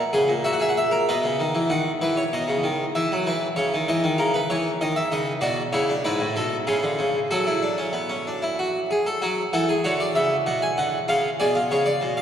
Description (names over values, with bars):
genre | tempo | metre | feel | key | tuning
classical, baroque-style 3-part fugue for harpsichord | 96 BPM | 3/4 | straight | F# minor from 5.4 s | A4 = 440 Hz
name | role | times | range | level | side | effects
harpsichord | solo | 0.0-12.2 s | G#2 to G#5 | -21 LUFS | equal | none
room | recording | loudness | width
wet cathedral reverb, RT60 4.7 s | heard from further back in the room | -21 LUFS | side -9 dB against mid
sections
0.0-1.7 A section; 1.7-9.2 B section; 9.2-12.2 C section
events
none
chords
0.0 F#7/A#; 1.1 B; 1.7 B/D#; 3.0 E5; 3.6 A#dim/C#; 4.8 C#madd9; 5.4 Bm; 6.7 C#; 7.3 F#m; 9.2 F#5; 10.5 G#m7b5/B; 11.1 C#7